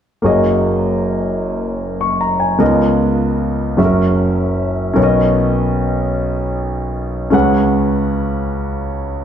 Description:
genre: gospel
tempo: 51 BPM (dotted quarters)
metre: 6/8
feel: straight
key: F# major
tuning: A4 = 438 Hz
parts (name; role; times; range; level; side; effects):
- warm concert grand piano; accompaniment; 0.2-9.2 s; F#1 to C#6; -14 LUFS; equal; none
room: wet recital hall reverb, RT60 1.6 s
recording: dark, warm production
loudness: -14 LUFS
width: side -9 dB against mid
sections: 0.2-9.2 A section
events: none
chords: 0.2 F#69; 2.6 C#13; 3.8 F#7; 5.0 Bmaj9; 7.3 C#7sus4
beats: | 0.24 1.43 | 2.61 3.79 | 4.97 6.16 | 7.34 8.52

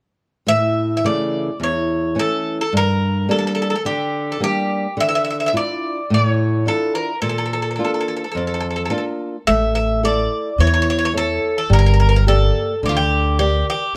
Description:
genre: greek folk, Greek bouzouki band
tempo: 107 BPM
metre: 4/4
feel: straight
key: A phrygian dominant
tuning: A4 = 440 Hz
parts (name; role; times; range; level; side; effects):
- Greek bouzouki; melody; 0.5-13.9 s; F4 to E5; -22 LUFS; equal; plate reverb
- flamenco guitar; accompaniment; 0.5-13.8 s; E2 to E5; -23 LUFS; equal; none
- upright bass; bass; 9.5-13.6 s; G1 to E2; -19 LUFS; equal; none
room: moderate studio ambience, RT60 0.5 s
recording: none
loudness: -19 LUFS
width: mono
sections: 0.5-9.5 A section; 9.5-14.0 A section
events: none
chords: 0.5 A; 2.7 Gm; 5.0 Dmadd9; 7.2 Bb; 9.5 A; 11.7 Gm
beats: | 0.46 1.03 1.59 2.15 | 2.72 3.28 3.84 4.41 | 4.97 5.53 6.09 6.66 | 7.22 7.78 8.34 8.90 | 9.47 10.03 10.59 11.15 | 11.71 12.27 12.83 13.39

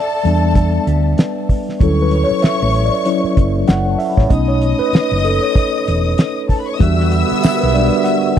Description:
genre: lush 1970s-style soul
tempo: 96 BPM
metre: 4/4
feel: swing 58% on 16ths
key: E dorian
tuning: A4 = 442 Hz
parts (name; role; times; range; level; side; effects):
- dark studio string section; second line; 0.0-8.4 s; A4 to E6; -22 LUFS; left 2 dB; none
- mellow tine electric piano; accompaniment; 0.0-8.4 s; F#3 to F#5; -17 LUFS; left 2 dB; medium stereo tremolo
- hollow-body short-scale fingered electric bass; bass; 0.2-7.9 s; E1 to E2; -16 LUFS; equal; none
- cloth-damped thuddy drum kit; drums; 0.3-8.4 s; hi-hat, kick drum, snare drum; -13 LUFS; equal; none
- vibraphone with medium mallets; texture; 0.9-8.4 s; G3 to B5; -28 LUFS; right 1 dB; none
- percussive tonewheel organ; sustained chords; 6.8-8.4 s; D3 to F#4; -25 LUFS; equal; overdrive, chorus vibrato, slow rotary speaker
- clear trombone section; stabs; 6.8-8.4 s; B2 to B3; -20 LUFS; right 15 dB; none
- tambourine; percussion; 7.4-7.6 s; none; -32 LUFS; left 18 dB; none
room: studio ambience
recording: dry, close 1970s-style studio recording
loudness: -13 LUFS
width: side -9 dB against mid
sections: 0.0-8.4 A section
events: tine electric piano solo 0.0-8.4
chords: 0.0 A7sus4; 1.8 Dmaj9; 4.3 B9; 6.8 Em9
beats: 0.55 1.18 | 1.80 2.43 3.06 3.68 | 4.30 4.93 5.56 6.18 | 6.81 7.43 8.06

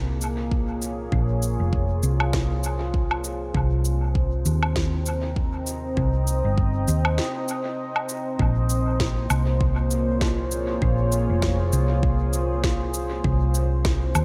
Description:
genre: ambient dub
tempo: 99 BPM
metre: 4/4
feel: swing 57% on 16ths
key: Bb dorian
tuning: A4 = 440 Hz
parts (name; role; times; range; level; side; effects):
- deep dark ambient pad; sustained chords; 0.0-14.2 s; Bb3 to Bb5; -30 LUFS; equal; chorus, built-in reverb
- hollow-body short-scale fingered electric bass; bass; 0.0-14.2 s; F1 to Eb2; -26 LUFS; equal; none
- electronic shaker, woodblock and snare drum; drums; 0.2-14.2 s; none; -32 LUFS; equal; dub echo
- electronic kick drum; drums; 0.5-14.0 s; none; -28 LUFS; equal; none
room: light reverb, digital ambience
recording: none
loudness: -24 LUFS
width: mono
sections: 0.0-8.4 A section; 8.4-14.2 B section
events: break 7.2-8.4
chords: 0.0 Bbm7; 3.5 Cm7; 8.4 Bbm7; 13.2 C7(no3)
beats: 0.52 | 1.12 1.73 2.33 2.94 | 3.55 4.15 4.76 5.37 | 5.97 6.58 7.18 7.79 | 8.39 9.00 9.61 10.21 | 10.82 11.43 12.03 12.64 | 13.24 13.85

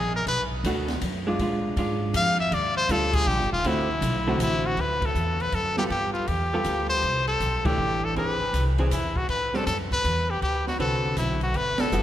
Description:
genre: jazz, small-group swing and bop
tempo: 160 BPM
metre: 3/4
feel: swing 65% on 8ths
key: G major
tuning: A4 = 440 Hz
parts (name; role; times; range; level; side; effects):
- brilliant trumpet; melody; 0.0-12.0 s; E4 to F5; -26 LUFS; left 1 dB; none
- upright bass; bass; 0.0-12.0 s; Eb1 to Bb2; -28 LUFS; equal; none
- open jazz drum kit; drums; 0.3-12.0 s; hi-hat, kick drum, ride cymbal, snare drum; -33 LUFS; equal; none
- vintage hollow-body jazz guitar; accompaniment; 0.7-12.0 s; D3 to B4; -30 LUFS; right 1 dB; none
room: wet cathedral reverb, RT60 5.2 s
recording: recorded in a church or concert hall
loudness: -22 LUFS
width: side -12 dB against mid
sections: 0.0-4.8 A section; 4.8-12.0 B section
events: trumpet solo 0.0-4.8; band accent 5.0, 7.6, 11.7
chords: 0.3 Bm7; 1.4 Bb7; 2.5 Ebmaj9; 3.6 D7; 4.8 Gmaj13; 5.9 G9; 7.0 C69; 8.2 E7b13; 9.3 Am9; 10.4 D6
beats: | 0.26 0.64 1.01 | 1.39 1.77 2.14 | 2.52 2.90 3.27 | 3.65 4.02 4.40 | 4.77 5.15 5.53 | 5.90 6.28 6.66 | 7.03 7.41 7.79 | 8.16 8.54 8.91 | 9.29 9.67 10.04 | 10.42 10.79 11.17 | 11.55 11.92

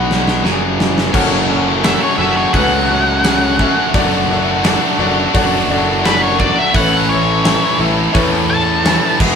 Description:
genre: classic rock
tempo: 86 BPM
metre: 4/4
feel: straight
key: F# minor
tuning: A4 = 440 Hz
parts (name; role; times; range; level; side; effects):
- bright tonewheel organ; sustained chords; 0.0-9.4 s; B3 to F#5; -29 LUFS; equal; none
- distorted electric guitar; riff; 0.0-9.4 s; E2 to A4; -18 LUFS; left 8 dB; overdrive
- overdriven electric guitar; riff; 0.0-9.4 s; E2 to F#4; -18 LUFS; right 5 dB; none
- fuzz fingered electric bass; bass; 0.0-9.4 s; E1 to E2; -19 LUFS; equal; overdrive
- big rock drum kit; drums; 0.1-9.4 s; crash cymbal, hi-hat, kick drum, snare drum; -18 LUFS; equal; none
- clear upright piano; accompaniment; 1.1-9.4 s; C#4 to E5; -22 LUFS; left 3 dB; none
- octave-fuzz lead guitar; melody; 1.9-9.2 s; B4 to A5; -17 LUFS; left 1 dB; distortion
room: moderate studio reverb, RT60 0.6 s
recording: band playing live in one room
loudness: -11 LUFS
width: side -6 dB against mid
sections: 0.0-1.1 A section; 1.1-9.4 B section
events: drum fill 0.0-1.1; lead electric guitar solo 1.1-9.4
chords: 0.4 F#m; 3.9 D/F#; 6.7 Aadd9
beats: 0.44 | 1.14 1.84 2.54 3.24 | 3.94 4.64 5.34 6.04 | 6.74 7.44 8.14 8.84

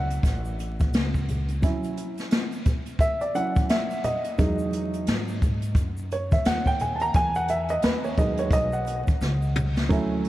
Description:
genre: hip hop, jazz-hop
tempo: 87 BPM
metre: 4/4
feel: swing 59% on 16ths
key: unclear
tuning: A4 = 440 Hz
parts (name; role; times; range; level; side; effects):
- dark upright piano; accompaniment; 0.0-10.3 s; C#3 to Bb5; -26 LUFS; right 1 dB; none
- upright bass; bass; 0.0-10.3 s; A1 to G#2; -29 LUFS; equal; none
- jazz brush drum kit; drums; 0.1-10.3 s; hi-hat, kick drum, snare drum, toms; -25 LUFS; equal; none
- egg shaker and congas; percussion; 0.1-9.9 s; none; -34 LUFS; equal; none
room: moderate huge ambient reverb, RT60 4.3 s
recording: dreamy mix soaked in reverb, vinyl crackle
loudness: -22 LUFS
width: side -15 dB against mid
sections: 0.0-9.9 A section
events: upright piano solo 0.0-9.9; drum fill 9.2-9.9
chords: 0.0 Dmaj9 (rootless); 4.4 Emaj9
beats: 0.25 0.94 | 1.63 2.32 3.01 3.70 | 4.39 5.08 5.77 6.46 | 7.14 7.83 8.52 9.21 | 9.90

